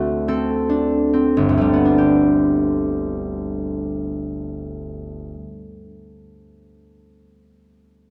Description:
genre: classical, solo harp piece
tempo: 33-40 BPM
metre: 4/4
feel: rubato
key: G major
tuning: A4 = 440 Hz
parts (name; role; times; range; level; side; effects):
- concert harp; solo; 0.0-5.9 s; G1 to C5; -20 LUFS; equal; none
room: moderate recital hall reverb, RT60 1.7 s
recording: dark, warm production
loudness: -19 LUFS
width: mono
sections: 0.0-2.0 A section; 2.0-8.1 B section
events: slowing down 0.0-2.0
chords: 0.0 D7; 2.0 G

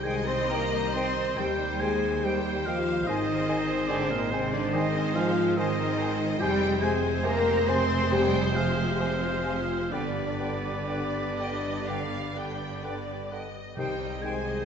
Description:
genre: classical, slow romantic movement for symphony orchestra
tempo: 60-75 BPM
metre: 4/4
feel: rubato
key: C minor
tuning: A4 = 440 Hz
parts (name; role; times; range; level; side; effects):
- rich studio violin section; melody; 0.0-14.7 s; C5 to G5; -37 LUFS; left 2 dB; none
- warm oboe; second line; 0.0-14.7 s; Bb4 to C6; -36 LUFS; right 1 dB; none
- warm studio violin section; second line; 0.0-14.7 s; Bb4 to C6; -39 LUFS; left 4 dB; none
- rich studio viola section; accompaniment; 0.0-14.7 s; G3 to Ab4; -37 LUFS; right 1 dB; none
- mellow French horn section; sustained chords; 0.0-14.7 s; Bb3 to C5; -30 LUFS; left 4 dB; none
- mellow trombone section; sustained chords; 0.0-14.7 s; C3 to Ab3; -39 LUFS; right 4 dB; none
- concert harp; arpeggios; 0.0-14.7 s; F2 to Ab5; -39 LUFS; left 7 dB; none
- clear trumpet; stabs; 0.0-14.7 s; B4 to C5; -37 LUFS; equal; none
- rich studio double bass section; bass; 0.0-14.7 s; F1 to Eb2; -33 LUFS; right 4 dB; none
- timpani; percussion; 0.0-0.9, 13.8-14.7 s; C3; -44 LUFS; left 2 dB; none
- clear clarinet; second line; 0.1-14.4 s; B4 to C5; -42 LUFS; left 1 dB; none
- silver concert flute; second line; 0.1-14.3 s; G5 to Ab5; -40 LUFS; equal; none
- mellow bassoon; accompaniment; 0.1-14.4 s; C3 to Eb3; -40 LUFS; right 2 dB; none
- clear studio cello section; bass; 0.1-14.7 s; Bb2 to C4; -34 LUFS; right 3 dB; none
room: moderate concert hall reverb, RT60 2.1 s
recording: nothing above 7.9 kHz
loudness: -25 LUFS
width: side -7 dB against mid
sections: 0.0-14.7 A section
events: none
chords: 0.0 Cm; 1.4 Cm/Eb; 3.1 Ab; 6.4 Fm; 9.9 G; 13.8 Cm

